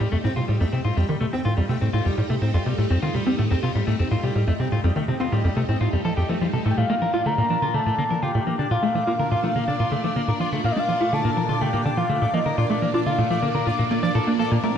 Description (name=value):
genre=ambient, sequencer-driven space music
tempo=124 BPM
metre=4/4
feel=straight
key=Bb major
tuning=A4 = 441 Hz
part: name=phased string machine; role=sustained chords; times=0.0-14.8 s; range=Bb2 to Eb4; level=-30 LUFS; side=right 1 dB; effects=ensemble chorus, phaser
part: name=clean electric guitar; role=arpeggios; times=0.0-14.8 s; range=G3 to D5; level=-28 LUFS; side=left 2 dB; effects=auto-pan, ping-pong delay
part: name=tight sequencer bass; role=riff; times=0.0-14.8 s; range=F2 to F4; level=-22 LUFS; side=equal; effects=ensemble chorus, ping-pong delay
part: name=pulsing gated texture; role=texture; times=0.0-14.8 s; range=G5 to D6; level=-35 LUFS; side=left 1 dB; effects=chorus, built-in reverb
part: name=soft octave-layered synth lead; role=melody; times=6.7-13.8 s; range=D5 to Bb5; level=-25 LUFS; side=left 1 dB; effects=chorus, ping-pong delay
room=wet concert hall reverb, RT60 2.3 s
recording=none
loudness=-20 LUFS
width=side -8 dB against mid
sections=0.0-14.8 A section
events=fade-in on string machine 0.0-14.8; fade-in on synth texture 0.0-14.8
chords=0.0 Fadd9; 6.8 Bbmaj7